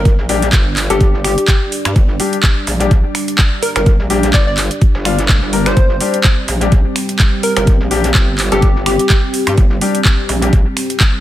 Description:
bass house; 126 BPM; 4/4; swing 56% on 16ths; G minor; A4 = 440 Hz
dark analog pad; sustained chords; 0.0-11.2 s; G3 to D5; -22 LUFS; right 1 dB; chorus, sidechain pumping
metallic wobble bass; bass; 0.0-10.6 s; G1 to G2; -18 LUFS; equal; distortion, chorus, tube saturation, sidechain pumping
electronic kick drum; drums; 0.1-11.1 s; -12 LUFS; equal; overdrive
garage drum kit; drums; 0.1-11.1 s; finger snaps, handclaps, hi-hat; -18 LUFS; right 1 dB; overdrive
clear baby grand piano; stabs; 0.3-10.5 s; G3 to Bb4; -20 LUFS; left 5 dB; sidechain pumping, tape echo
plucky unison lead; melody; 0.9-9.3 s; G4 to D5; -19 LUFS; left 1 dB; tape echo
digital ambience; -11 LUFS; side -13 dB against mid
0.0-11.2 A section
0.0 G5

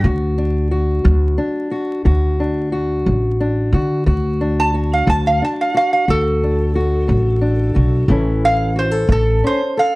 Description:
acoustic country blues, solo or duo; 60 BPM (dotted quarters); 12/8; straight; D major; A4 = 441 Hz
metal-body resonator slide guitar; melody; 0.0-10.0 s; A4 to A5; -18 LUFS; right 1 dB
fingerpicked old ladder-braced acoustic guitar; accompaniment; 0.0-10.0 s; A2 to A4; -20 LUFS; left 1 dB
upright bass; bass; 0.0-9.4 s; A1 to D3; -16 LUFS; equal
light reverb; dark, warm production, vinyl crackle; -14 LUFS; side -22 dB against mid
0.0-10.0 A section
resonator guitar played with a steel bar solo 0.0-10.0
0.1 D; 8.1 A

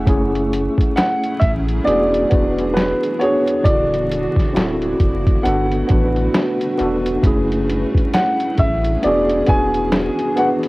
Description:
lo-fi hip hop; 67 BPM; 4/4; swing 60% on 16ths; F# minor; A4 = 443 Hz
tine electric piano; accompaniment; 0.0-10.7 s; C#3 to B4; -20 LUFS; equal; overdrive, fast stereo tremolo, cassette tape, low-pass filter
granular cloud pad; sustained chords; 0.0-10.7 s; C#3 to B4; -27 LUFS; equal; built-in reverb, low-pass filter
soft dub sub bass; bass; 0.0-10.1 s; D1 to A1; -23 LUFS; equal
lo-fi sampler-style drum kit; drums; 0.1-10.7 s; hi-hat, kick drum, snare drum; -18 LUFS; equal; overdrive, vintage 12-bit sampler grit
warm upright piano; melody; 1.0-10.5 s; B4 to G#5; -20 LUFS; equal; low-pass filter, cassette tape
moderate booth ambience, RT60 0.3 s; home recording on cassette, vinyl crackle; -15 LUFS; side -21 dB against mid
0.1-10.7 A section
0.1 F#m7; 1.9 E7; 3.6 Dmaj7; 4.5 D7; 5.4 Gmaj7; 7.2 F#m7; 9.0 E7

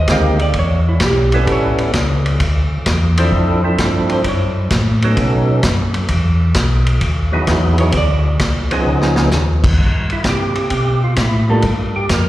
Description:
soul jazz organ trio; 130 BPM; 4/4; swing 68% on 8ths; A4 = 444 Hz
vintage hollow-body jazz guitar; accompaniment; 0.0-4.6, 7.8-8.2, 11.5-11.6 s; G3 to F5; -21 LUFS; right 1 dB; slapback echo
mellow tonewheel organ; bass; 0.0-12.3 s; A1 to C3; -16 LUFS; equal; chorus vibrato, slow rotary speaker
percussive tonewheel organ; melody; 0.1-12.3 s; F3 to Bb4; -20 LUFS; right 1 dB; slow rotary speaker, overdrive, slapback echo
vintage drum kit; drums; 0.1-12.2 s; crash cymbal, hi-hat, kick drum, ride cymbal, snare drum; -19 LUFS; equal
light reverb, small room reverb; live gig heard through the venue's PA, recital hall reverb; -13 LUFS; side -15 dB against mid
0.0-9.8 A section; 9.8-12.3 A section
hollow-body jazz guitar solo 0.0-9.8; drum fill 8.9-9.3; tonewheel organ solo 9.8-12.3
0.0 Abmaj7; 0.6 Em; 1.5 A7; 2.4 Dm7; 4.2 F#m; 6.1 Emaj7; 7.9 Dm7; 8.9 Db9; 9.8 C5; 11.6 Gm7

